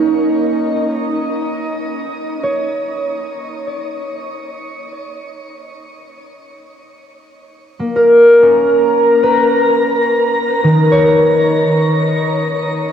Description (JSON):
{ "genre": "ambient", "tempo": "free time", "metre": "none", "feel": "none", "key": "unclear", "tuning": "A4 = 444 Hz", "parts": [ { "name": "concert harp", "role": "solo", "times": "0.0-12.9 s", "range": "Eb3 to F5", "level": "-12 LUFS", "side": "equal", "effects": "ping-pong delay" } ], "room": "wet shimmer reverb, RT60 9.1 s", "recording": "worn, warbling old tape, cassette tape, warbly pitch drift", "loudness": "-11 LUFS", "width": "side -9 dB against mid", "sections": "0.0-9.1 A section; 9.1-12.9 B section", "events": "none", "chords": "0.0 Bbmadd11; 9.1 Cbmaj7; 11.6 N.C." }